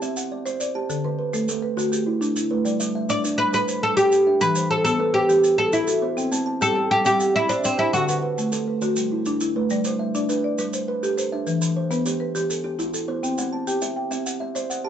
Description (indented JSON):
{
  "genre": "southern african traditional, mbira-style interlocking cycle",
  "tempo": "136 BPM (dotted quarters)",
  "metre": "12/8",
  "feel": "straight",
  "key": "G major",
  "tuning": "A4 = 440 Hz",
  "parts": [
    { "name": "kalimba", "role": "arpeggios", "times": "0.0-14.9 s", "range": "D3 to A5", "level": "-26 LUFS", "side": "right 4 dB", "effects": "none" },
    { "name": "marimba with medium mallets", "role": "arpeggios", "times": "0.0-14.9 s", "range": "D3 to A5", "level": "-26 LUFS", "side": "left 3 dB", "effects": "none" },
    { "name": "maracas", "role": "percussion", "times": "0.0-14.8 s", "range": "none", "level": "-32 LUFS", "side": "right 2 dB", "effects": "none" },
    { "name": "oud", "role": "melody", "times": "3.1-9.4 s", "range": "C4 to D5", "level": "-19 LUFS", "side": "equal", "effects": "none" }
  ],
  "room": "light reverb",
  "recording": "band playing live in one room, nothing above 7.9 kHz",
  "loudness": "-20 LUFS",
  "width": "side -9 dB against mid",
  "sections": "0.0-9.7 A section; 9.7-14.9 B section",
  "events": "none",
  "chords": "0.0 C; 0.9 D; 2.7 G; 4.4 Em; 6.2 C; 7.9 D; 9.7 G; 11.5 Em; 13.2 C"
}